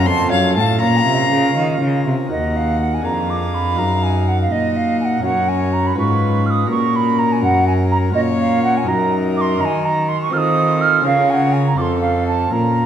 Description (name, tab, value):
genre	classical, baroque-style sonata movement with continuo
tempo	82 BPM (dotted quarters)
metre	6/8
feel	straight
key	Eb minor, Bb minor from 8.2 s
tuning	A4 = 442 Hz
part	rich violin	melody	0.0-12.9 s	A4 to C6	-24 LUFS	left 6 dB	none
part	bright wooden flute	second line	0.0-12.9 s	Db5 to F6	-19 LUFS	right 4 dB	none
part	pipe organ, sparkling flutes	accompaniment	0.0-12.9 s	Eb2 to Cb5	-20 LUFS	left 1 dB	none
part	rich cello	bass	0.0-12.9 s	Eb2 to Eb3	-20 LUFS	equal	none
room	wet scoring stage reverb, RT60 1.9 s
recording	dark, warm production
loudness	-14 LUFS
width	side -9 dB against mid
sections	0.0-2.3 A section; 2.3-12.9 A section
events	none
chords	0.1 F; 0.8 Bbm; 2.3 Ebm; 3.1 Bb7/F; 3.8 Ebm/Gb; 5.2 Gb; 6.0 Db7/Ab; 6.7 Gb/Bb; 8.2 Bbm; 8.9 Ebm/Gb; 9.6 Ebm; 10.3 F7/Eb; 11.1 Bbm/Db; 11.8 F